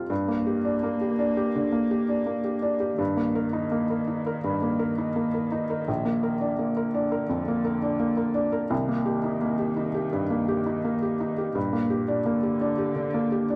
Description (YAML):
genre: neoclassical piano and strings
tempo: 84 BPM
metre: 4/4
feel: rubato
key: G minor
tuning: A4 = 439 Hz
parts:
  - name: felt-muted upright piano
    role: accompaniment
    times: 0.0-13.6 s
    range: Bb1 to Bb4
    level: -27 LUFS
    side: equal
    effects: none
  - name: dark cello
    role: second line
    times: 0.1-13.6 s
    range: Bb2 to Bb3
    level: -37 LUFS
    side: equal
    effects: none
room: moderate studio reverb, RT60 0.7 s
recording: none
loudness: -26 LUFS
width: mono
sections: 0.1-13.6 A section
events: none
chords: 0.1 Gm; 3.0 Eb/G; 5.9 Bb; 8.7 Cm7; 11.6 Gm